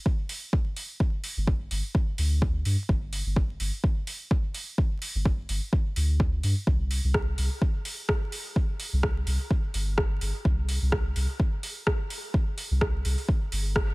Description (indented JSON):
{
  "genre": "dub techno",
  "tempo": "127 BPM",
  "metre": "4/4",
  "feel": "swing 56% on 16ths",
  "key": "unclear",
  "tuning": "A4 = 442 Hz",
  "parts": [
    { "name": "electronic kick drum", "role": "drums", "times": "0.1-13.9 s", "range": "none", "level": "-25 LUFS", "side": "equal", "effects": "overdrive, small room reverb" },
    { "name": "deep house drum kit", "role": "drums", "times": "0.3-13.9 s", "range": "hi-hat, rim click", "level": "-33 LUFS", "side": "equal", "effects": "overdrive, small room reverb" },
    { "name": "soft dub sub bass", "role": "bass", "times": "1.4-13.9 s", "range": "G1 to G2", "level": "-27 LUFS", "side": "equal", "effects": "sidechain pumping" }
  ],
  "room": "little or no reverb",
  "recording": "vinyl crackle",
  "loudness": "-25 LUFS",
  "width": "side -24 dB against mid",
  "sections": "0.0-13.9 A section",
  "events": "band accent 13.8",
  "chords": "none",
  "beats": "0.06 0.53 | 1.00 1.48 1.95 2.42 | 2.89 3.36 3.84 4.31 | 4.78 5.25 5.73 6.20 | 6.67 7.14 7.62 8.09 | 8.56 9.03 9.51 9.98 | 10.45 10.92 11.40 11.87 | 12.34 12.81 13.29 13.76"
}